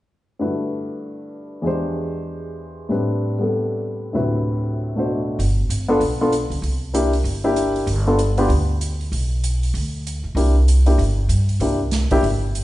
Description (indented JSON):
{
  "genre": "jazz, big band swing",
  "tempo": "193 BPM",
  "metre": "4/4",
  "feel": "swing 62% on 8ths",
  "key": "G major",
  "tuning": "A4 = 440 Hz",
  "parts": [
    { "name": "warm upright piano", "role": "accompaniment", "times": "0.4-12.2 s", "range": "D2 to B#4", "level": "-21 LUFS", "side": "left 1 dB", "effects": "none" },
    { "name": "upright bass", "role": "bass", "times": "5.4-12.6 s", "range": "G1 to G2", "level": "-19 LUFS", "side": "equal", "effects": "none" },
    { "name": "swinging big-band drum kit", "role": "drums", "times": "5.4-12.6 s", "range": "hi-hat, kick drum, snare drum", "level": "-30 LUFS", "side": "right 2 dB", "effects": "none" }
  ],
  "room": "moderate recital hall reverb, RT60 1.3 s",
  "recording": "recorded in a church or concert hall, nothing above 10.7 kHz",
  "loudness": "-18 LUFS",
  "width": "side -16 dB against mid",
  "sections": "0.4-5.4 A section; 5.4-12.6 B section",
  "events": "none",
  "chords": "0.4 Gmaj13; 1.6 E7alt; 2.9 Am11; 4.1 D13; 5.4 G9; 6.6 C9; 7.9 G; 10.4 C9"
}